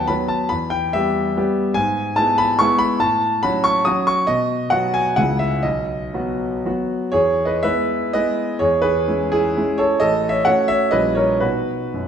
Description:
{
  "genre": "classical, romantic triple-time dance for piano with dotted rhythms",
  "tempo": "108-155 BPM",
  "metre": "3/4",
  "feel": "rubato",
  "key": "E major",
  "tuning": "A4 = 440 Hz",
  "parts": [
    { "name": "warm concert grand piano", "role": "solo", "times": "0.0-12.1 s", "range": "A1 to D#6", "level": "-17 LUFS", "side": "equal", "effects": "none" }
  ],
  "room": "wet recital hall reverb, RT60 1.7 s",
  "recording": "minimal, uncompressed stereo recording",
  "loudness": "-16 LUFS",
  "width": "side -8 dB against mid",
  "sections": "0.0-7.1 A section; 7.1-12.1 B section",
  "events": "none",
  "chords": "0.0 B/D#; 0.5 Em; 1.8 E/G#; 3.0 F#m/A; 4.3 B; 5.2 C#m; 5.6 B; 7.1 E; 8.6 C#m/E; 10.0 F#m/A; 10.9 A#dim7; 11.4 B",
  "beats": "0.11 | 0.52 0.95 1.37 | 1.77 2.18 2.60 | 3.00 3.43 3.86 | 4.28 4.71 5.18 | 5.64 6.15 6.65 | 7.13 7.63 8.14 | 8.60 9.07 9.55 | 10.01 10.46 10.93 | 11.42 11.93"
}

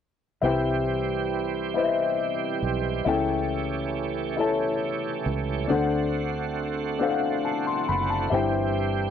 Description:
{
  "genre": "gospel",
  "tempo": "46 BPM (dotted quarters)",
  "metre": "6/8",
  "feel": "straight",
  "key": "C major",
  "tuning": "A4 = 440 Hz",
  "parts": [
    { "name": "dark upright piano", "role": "accompaniment", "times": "0.4-9.1 s", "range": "G2 to C6", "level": "-25 LUFS", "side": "left 5 dB", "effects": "cassette tape" },
    { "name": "bright tonewheel organ", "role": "sustained chords", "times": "0.4-9.1 s", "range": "D3 to G4", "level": "-30 LUFS", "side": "right 10 dB", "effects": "slow rotary speaker, overdrive, chorus vibrato, cassette tape" },
    { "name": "fingered electric bass", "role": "bass", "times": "0.4-9.1 s", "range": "F#1 to D2", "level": "-31 LUFS", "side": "right 3 dB", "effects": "none" }
  ],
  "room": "moderate small room reverb, RT60 0.6 s",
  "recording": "home recording on cassette",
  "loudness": "-23 LUFS",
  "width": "side -8 dB against mid",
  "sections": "0.4-9.1 A section",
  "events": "none",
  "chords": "0.4 Cmaj7; 3.1 A7/C#; 5.7 D7; 8.3 C/G",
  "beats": "| 0.42 1.74 | 3.06 4.37 | 5.69 7.01 | 8.32"
}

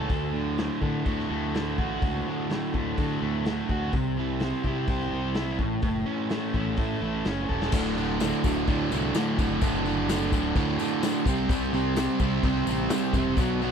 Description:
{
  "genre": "classic rock",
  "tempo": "126 BPM",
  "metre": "4/4",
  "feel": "straight",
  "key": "D major, D mixolydian from 7.7 s",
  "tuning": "A4 = 440 Hz",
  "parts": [
    { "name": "distorted electric guitar", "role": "riff", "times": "0.0-13.7 s", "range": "D2 to C5", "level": "-31 LUFS", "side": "left 14 dB", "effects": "distortion" },
    { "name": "overdriven electric guitar", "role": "riff", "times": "0.0-13.7 s", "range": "D2 to A4", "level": "-29 LUFS", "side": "right 12 dB", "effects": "none" },
    { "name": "growling fingered electric bass", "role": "bass", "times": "0.0-13.7 s", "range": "D1 to D3", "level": "-32 LUFS", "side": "left 1 dB", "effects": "overdrive" },
    { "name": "raw garage drum kit", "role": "drums", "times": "0.1-13.5 s", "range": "crash cymbal, hi-hat, kick drum, snare drum", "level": "-30 LUFS", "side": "left 1 dB", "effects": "none" },
    { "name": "bright tonewheel organ", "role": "sustained chords", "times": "7.4-13.7 s", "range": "B3 to F5", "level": "-40 LUFS", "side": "left 1 dB", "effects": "none" },
    { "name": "crunchy overdriven guitar", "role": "riff", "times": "7.7-13.7 s", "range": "D2 to C4", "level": "-31 LUFS", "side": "right 2 dB", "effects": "none" },
    { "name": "tambourine", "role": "percussion", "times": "7.7-13.7 s", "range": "none", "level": "-44 LUFS", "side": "left 23 dB", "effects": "none" }
  ],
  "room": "little or no reverb",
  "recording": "dry, close 1970s-style studio recording",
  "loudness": "-24 LUFS",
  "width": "side -7 dB against mid",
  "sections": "0.0-7.7 A section; 7.7-13.7 B section",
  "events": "drum fill 7.5",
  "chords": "0.1 D; 3.9 C; 5.6 A; 7.7 D; 11.3 C",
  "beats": "| 0.10 0.58 1.06 1.53 | 2.01 2.49 2.97 3.45 | 3.93 4.41 4.88 5.36 | 5.84 6.31 6.79 7.26 | 7.74 8.21 8.68 9.15 | 9.62 10.09 10.56 11.03 | 11.50 11.97 12.44 12.91 | 13.38"
}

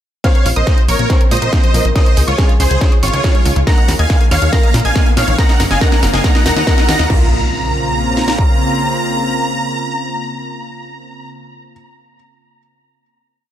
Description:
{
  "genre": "uplifting trance",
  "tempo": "140 BPM",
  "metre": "4/4",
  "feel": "straight",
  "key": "Bb minor",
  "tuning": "A4 = 440 Hz",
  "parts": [
    { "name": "supersaw chords", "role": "melody", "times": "0.2-11.3 s", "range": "F4 to Bb5", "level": "-19 LUFS", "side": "equal", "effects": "ensemble chorus, sidechain pumping, tape echo" },
    { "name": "felt-muted upright piano", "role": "second line", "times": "0.2-11.7 s", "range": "Ab3 to C5", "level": "-26 LUFS", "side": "equal", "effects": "ping-pong delay" },
    { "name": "wide unison pluck", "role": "second line", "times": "0.2-11.7 s", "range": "C6 to Bb6", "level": "-25 LUFS", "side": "right 1 dB", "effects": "cassette tape, sidechain pumping, tape echo" },
    { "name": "lush unison pad", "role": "sustained chords", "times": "0.6-11.3 s", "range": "Db3 to F4", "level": "-24 LUFS", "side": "equal", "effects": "chorus, sidechain pumping" },
    { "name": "analog pluck", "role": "arpeggios", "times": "0.2-7.3 s", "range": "Bb2 to Eb5", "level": "-25 LUFS", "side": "left 5 dB", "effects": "chorus, sidechain pumping, tape echo" },
    { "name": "techno drum kit", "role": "drums", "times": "0.2-8.5 s", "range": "kick drum, snare drum", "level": "-13 LUFS", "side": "equal", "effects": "distortion, overdrive" },
    { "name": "techno drum kit", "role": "drums", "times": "0.2-7.2 s", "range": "crash cymbal, hi-hat, snare drum", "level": "-21 LUFS", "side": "equal", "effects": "overdrive, sidechain pumping on hats, sidechain pumping on cymbals" },
    { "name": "riser and impact", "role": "sound effects", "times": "3.0-11.8 s", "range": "none", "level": "-24 LUFS", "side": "equal", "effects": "none" },
    { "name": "plucky analog bass", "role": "bass", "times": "0.5-8.3 s", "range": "Eb1 to Bb2", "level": "-16 LUFS", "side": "equal", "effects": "sidechain pumping" }
  ],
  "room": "digital ambience",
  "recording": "none",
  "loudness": "-11 LUFS",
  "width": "side -11 dB against mid",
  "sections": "0.2-7.1 build; 7.1-10.5 final chord",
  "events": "build-up 0.2-7.1; drum fill 0.2-7.1; filter sweep on synth pluck 0.2-7.1",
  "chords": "0.2 Bbmadd9; 2.0 Dbadd9; 3.7 Ebm; 4.5 Bbmadd9; 5.4 Gbadd9; 6.2 Ebm; 7.1 Bbmadd9",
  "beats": "| 0.24 0.67 1.10 1.53 | 1.96 2.38 2.81 3.24 | 3.67 4.10 4.53 4.96 | 5.38 5.81 6.24 6.67 | 7.10 7.53 7.96 8.38 | 8.81 9.24 9.67 10.10"
}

